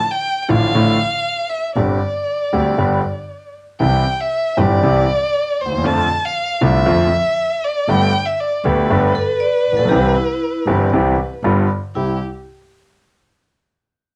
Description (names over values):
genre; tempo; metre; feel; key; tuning
tango; 118 BPM; 4/4; rubato; C major; A4 = 440 Hz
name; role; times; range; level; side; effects
warm violin; second line; 0.0-12.2 s; G4 to A5; -22 LUFS; equal; none
warm concert grand piano; accompaniment; 0.5-12.2 s; G1 to G4; -19 LUFS; equal; none
clear double bass; bass; 0.5-12.2 s; G1 to F2; -25 LUFS; equal; none
vibraphone with medium hard mallets; second line; 9.2-12.2 s; E4 to D5; -25 LUFS; equal; none
room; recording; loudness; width
light reverb; home recording on cassette, studio ambience; -17 LUFS; mono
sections
0.0-12.0 A section; 12.0-14.0 B section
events
violin solo 0.0-12.0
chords
0.0 Dm/A; 1.8 Gsus4; 2.8 G; 3.8 C; 5.9 F6; 7.9 Gadd9; 9.9 C; 11.4 G7; 12.0 C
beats
0.23 0.74 1.25 | 1.76 2.27 2.78 3.30 | 3.81 4.32 4.83 5.34 | 5.85 6.36 6.87 7.38 | 7.88 8.39 8.90 9.40 | 9.91 10.41 10.93 11.44 | 11.96